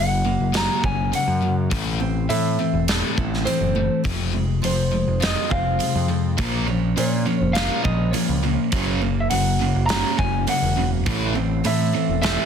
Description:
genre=quiet-loud alternative rock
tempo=103 BPM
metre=4/4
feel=straight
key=unclear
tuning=A4 = 440 Hz
part: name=electric guitar through a small old amp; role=melody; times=0.0-12.5 s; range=C5 to A#5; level=-25 LUFS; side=equal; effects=none
part: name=picked steel-string acoustic guitar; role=arpeggios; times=0.0-12.5 s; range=F2 to A#4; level=-29 LUFS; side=right 9 dB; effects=analog delay
part: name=distorted electric guitar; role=riff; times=0.0-12.5 s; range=F2 to A#3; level=-25 LUFS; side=left 12 dB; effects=distortion
part: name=growling picked electric bass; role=bass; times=0.0-12.4 s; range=E1 to A#2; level=-24 LUFS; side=equal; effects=overdrive
part: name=big rock drum kit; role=drums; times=0.5-12.4 s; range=hi-hat, kick drum, snare drum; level=-27 LUFS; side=right 1 dB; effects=soft clipping on kick
part: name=fuzz guitar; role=riff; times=6.4-12.5 s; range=F#2 to A#3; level=-26 LUFS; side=right 13 dB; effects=distortion
room=little or no reverb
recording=dense, heavily limited modern master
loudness=-19 LUFS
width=side -7 dB against mid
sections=0.0-12.5 A section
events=none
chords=0.0 F#; 1.7 Am; 4.0 Fm; 6.4 A#m; 8.7 F#; 11.1 Am

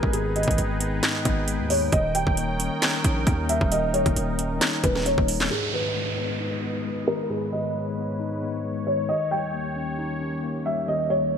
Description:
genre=hip hop, trap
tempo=134 BPM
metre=4/4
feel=half-time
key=G# harmonic minor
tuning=A4 = 440 Hz
part: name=felt-muted upright piano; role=melody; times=0.0-11.4 s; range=G#4 to G5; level=-27 LUFS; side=right 1 dB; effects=low-pass filter
part: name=mellow tine electric piano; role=accompaniment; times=0.0-11.4 s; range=G#2 to D#4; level=-29 LUFS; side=left 4 dB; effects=medium stereo tremolo, low-pass filter
part: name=sweeping resonant pad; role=sustained chords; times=0.0-11.4 s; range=D#2 to G#5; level=-33 LUFS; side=right 2 dB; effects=chorus, low-pass filter
part: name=hard-hitting 808-style bass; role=bass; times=0.0-5.5 s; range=D#1 to D#2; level=-28 LUFS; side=equal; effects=none
part: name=trap drum kit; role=drums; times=0.0-5.5 s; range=handclaps, hi-hat, kick drum, snare drum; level=-24 LUFS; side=right 1 dB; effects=overdrive
part: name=downlifter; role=sound effects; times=5.5-9.1 s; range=none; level=-33 LUFS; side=right 3 dB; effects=none
room=moderate lush hall reverb, RT60 2.1 s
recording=bright 1980s-style digital production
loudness=-22 LUFS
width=side -7 dB against mid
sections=0.0-5.5 A section; 5.5-11.4 B section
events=filter sweep 5.5-11.4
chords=0.0 G#m; 1.9 D#7; 5.5 G#m; 9.1 D#7

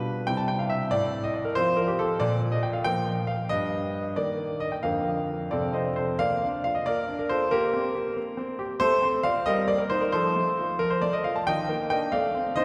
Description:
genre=classical-period piano sonatina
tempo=91 BPM (dotted quarters)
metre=6/8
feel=straight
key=Bb major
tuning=A4 = 438 Hz
part: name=clear grand piano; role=solo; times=0.0-12.6 s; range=F2 to A5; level=-26 LUFS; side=equal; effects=none
room=wet church reverb, RT60 3.2 s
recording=recorded in a church or concert hall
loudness=-26 LUFS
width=mono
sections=0.0-6.2 A section; 6.2-12.6 B section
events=none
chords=0.3 C; 0.9 F/A; 2.2 Bb5; 3.5 Eb/G; 4.8 Bb/F; 5.5 F; 6.2 Bb; 7.5 C5/Bb; 8.8 F/A; 9.5 Eb/G; 10.1 F; 11.5 Ebmaj7; 12.1 Adim

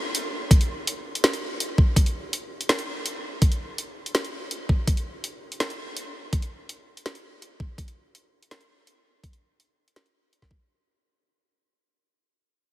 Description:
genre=drum and bass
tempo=165 BPM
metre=4/4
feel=half-time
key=none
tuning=none
part: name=drum and bass drum kit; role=drums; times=0.1-10.5 s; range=hi-hat, snare drum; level=-27 LUFS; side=equal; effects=overdrive, studio reverb
part: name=electronic kick drum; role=drums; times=0.5-10.6 s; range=none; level=-19 LUFS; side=equal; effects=overdrive, studio reverb
room=light reverb, digital ambience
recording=heavily compressed radio sound, multiband compression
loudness=-23 LUFS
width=side -16 dB against mid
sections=0.0-10.7 A section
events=fade-out 0.0-10.7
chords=none

